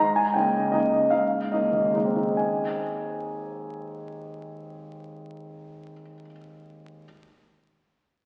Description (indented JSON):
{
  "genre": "classical, piano waltz",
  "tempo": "130-172 BPM",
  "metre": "3/4",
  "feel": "rubato",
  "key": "Ab major",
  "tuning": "A4 = 440 Hz",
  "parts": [
    { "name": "clear grand piano", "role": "solo", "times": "0.0-7.1 s", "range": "Ab1 to Bb5", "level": "-26 LUFS", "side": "equal", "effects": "none" }
  ],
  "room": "wet scoring stage reverb, RT60 1.5 s",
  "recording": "very old 78 rpm record, vinyl crackle, nothing above 10.3 kHz",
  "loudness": "-25 LUFS",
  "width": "mono",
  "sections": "0.0-2.4 A section; 2.4-4.9 B section",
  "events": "slowing down 0.0-2.4",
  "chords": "0.0 Eb7/Ab; 2.4 Ab"
}